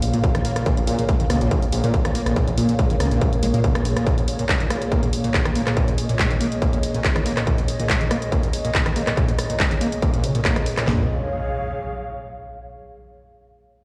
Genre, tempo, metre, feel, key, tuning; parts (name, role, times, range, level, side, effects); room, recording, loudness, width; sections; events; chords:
driving peak-time techno; 141 BPM; 4/4; straight; Bb minor; A4 = 440 Hz
detuned saw bass; bass; 0.0-3.9, 10.9-11.1 s; Bb1 to Bb2; -25 LUFS; equal; sidechain pumping
analog drone; drone; 0.0-10.9 s; Bb2; -32 LUFS; equal; chorus, sidechain pumping
punchy analog drum machine; drums; 0.0-10.9 s; handclaps, hi-hat, rim click; -29 LUFS; equal; sidechain pumping on hats, sidechain pumping on cymbals
airy breathy pad; texture; 0.0-12.5 s; Ab4 to F5; -32 LUFS; equal; chorus, sidechain pumping
screaming distorted acid line; riff; 0.1-11.1 s; Bb2 to Bb3; -29 LUFS; equal; distortion, analog chorus, sidechain pumping, tape echo
techno drum kit; drums; 0.2-11.0 s; handclaps, kick drum, snare drum, toms; -24 LUFS; equal; distortion
impact; sound effects; 11.0-12.6 s; -33 LUFS; equal
light reverb; played on a big sound system in a bare room, large studio reverb; -21 LUFS; mono
0.0-10.9 A section; 10.9-12.6 B section
0.0 Bbm